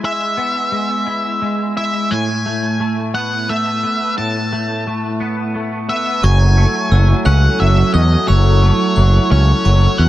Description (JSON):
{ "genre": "rock", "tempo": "58 BPM (dotted quarters)", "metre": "6/8", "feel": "straight", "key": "unclear", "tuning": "A4 = 441 Hz", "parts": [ { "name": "octave-fuzz lead guitar", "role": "melody", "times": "0.0-10.1 s", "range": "C#5 to A5", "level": "-20 LUFS", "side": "left 1 dB", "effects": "distortion" }, { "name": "twangy electric guitar", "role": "arpeggios", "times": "0.0-10.1 s", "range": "A2 to E4", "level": "-20 LUFS", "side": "equal", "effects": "ensemble chorus, tape echo" }, { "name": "warm analog pad", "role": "sustained chords", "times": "6.2-10.1 s", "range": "F#3 to A4", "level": "-21 LUFS", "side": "right 4 dB", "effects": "chorus, phaser" }, { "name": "glockenspiel with brass mallets", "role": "arpeggios", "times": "6.2-10.1 s", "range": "C#6 to F#6", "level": "-29 LUFS", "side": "right 4 dB", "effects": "tape echo" }, { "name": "growling fingered electric bass", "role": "bass", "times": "6.2-10.1 s", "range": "F#1 to E2", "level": "-11 LUFS", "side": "equal", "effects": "overdrive" } ], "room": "light reverb", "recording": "dark, warm production", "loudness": "-13 LUFS", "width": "side -14 dB against mid", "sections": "0.0-6.2 A section; 6.2-10.1 B section", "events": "none", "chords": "0.0 E/G#; 2.1 Asus2; 6.2 F#m7" }